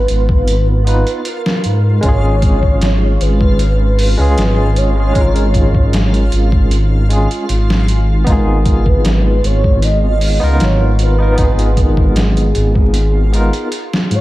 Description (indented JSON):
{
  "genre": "trip hop",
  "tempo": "77 BPM",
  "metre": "4/4",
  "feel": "straight",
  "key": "G# dorian",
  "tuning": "A4 = 440 Hz",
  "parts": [
    { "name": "pure breathy sine lead", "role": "melody", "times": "0.0-14.2 s", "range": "G#4 to D#5", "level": "-21 LUFS", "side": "right 1 dB", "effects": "ensemble chorus, dub echo" },
    { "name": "barky tine electric piano", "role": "accompaniment", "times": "0.0-13.7 s", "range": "G#3 to B4", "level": "-20 LUFS", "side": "equal", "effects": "tremolo, tape echo" },
    { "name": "dark detuned saw bass", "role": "bass", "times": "0.0-14.2 s", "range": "G#1 to G#2", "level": "-13 LUFS", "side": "equal", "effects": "tube saturation" },
    { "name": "backwards swelling texture", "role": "texture", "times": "0.0-14.2 s", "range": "E#4", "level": "-28 LUFS", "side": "right 2 dB", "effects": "built-in reverb, analog chorus" },
    { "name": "trip hop sampler-style drum kit", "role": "drums", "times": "0.1-14.2 s", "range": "hi-hat, kick drum, snare drum", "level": "-16 LUFS", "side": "equal", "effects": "overdrive" }
  ],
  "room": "digital ambience",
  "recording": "vinyl crackle",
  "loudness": "-11 LUFS",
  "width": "side -17 dB against mid",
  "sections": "0.0-14.2 A section",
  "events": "none",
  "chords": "0.0 G#m69; 2.0 C#/G#; 8.3 G#m69"
}